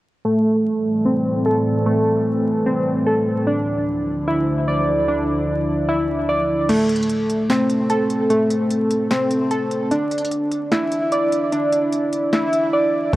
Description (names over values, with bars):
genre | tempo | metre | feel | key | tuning
hip hop, trap | 149 BPM | 4/4 | half-time | A minor | A4 = 439 Hz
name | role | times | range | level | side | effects
warbly tape-like pad | sustained chords | 0.7-6.7 s | D2 to E4 | -25 LUFS | left 1 dB | chorus, built-in reverb, low-pass filter
warbly lo-fi synth keys | arpeggios | 0.2-13.2 s | A3 to D5 | -18 LUFS | equal | chorus, low-pass filter, digital delay
trap drum kit | drums | 6.7-13.2 s | crash cymbal, hi-hat, kick drum, snare drum | -26 LUFS | equal | overdrive
room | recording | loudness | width
light reverb | worn, warbling old tape, cassette tape, vinyl crackle, warbly pitch drift | -17 LUFS | side -16 dB against mid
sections
0.2-6.7 A section; 6.7-13.2 B section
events
filter sweep 0.2-6.7; kick muted 6.7-13.1; drums muted 12.7-13.1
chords
0.2 Am7; 3.5 Dmadd9; 6.7 Am; 9.9 Dsus2